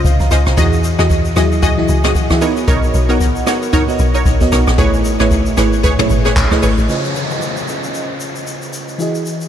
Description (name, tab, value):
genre	amapiano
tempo	114 BPM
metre	4/4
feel	swing 58% on 16ths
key	unclear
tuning	A4 = 440 Hz
part	bell-like FM electric piano	accompaniment	0.0-9.5 s	Db3 to Cb6	-18 LUFS	right 1 dB	chorus
part	deep log drum bass	bass	0.0-6.9 s	G#1 to E2	-15 LUFS	equal	none
part	jazz brush drum kit	drums	0.0-9.5 s	handclaps, hi-hat, kick drum, rim click, shaker, toms	-18 LUFS	equal	none
part	punchy chord stab	stabs	0.3-6.7 s	Eb4 to Eb5	-20 LUFS	left 1 dB	chorus, ping-pong delay
part	downlifter	sound effects	6.9-9.5 s	none	-24 LUFS	left 1 dB	none
room	moderate huge ambient reverb, RT60 9.2 s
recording	dreamy mix soaked in reverb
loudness	-12 LUFS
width	side -10 dB against mid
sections	0.0-6.9 A section; 6.9-9.5 B section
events	drop 0.0-6.9; FM electric piano fill 1.1-2.7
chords	0.0 Dbmaj9; 0.6 Emaj9; 2.4 Cbmaj9; 4.8 Amaj9; 6.9 Dbmaj9